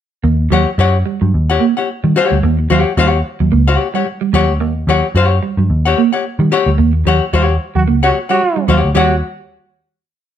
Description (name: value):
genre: funk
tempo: 110 BPM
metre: 4/4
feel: swing 56% on 16ths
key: unclear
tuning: A4 = 440 Hz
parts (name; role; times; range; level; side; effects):
- clean electric guitar; riff; 0.2-9.1 s; F#3 to Bb3; -18 LUFS; right 9 dB; lush chorus
- vintage muted picked electric bass; bass; 0.2-9.2 s; Db2 to Eb3; -14 LUFS; equal; none
- archtop guitar, miked and amplified; accompaniment; 0.5-9.1 s; G4 to F#5; -15 LUFS; left 6 dB; none
- bright trombone; second line; 7.8-9.2 s; F#4; -17 LUFS; right 4 dB; none
room: light reverb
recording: none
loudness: -12 LUFS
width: side -10 dB against mid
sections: 0.2-9.0 groove; 9.0-10.4 final chord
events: band accent 6.8-9.0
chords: 0.2 Eb7#9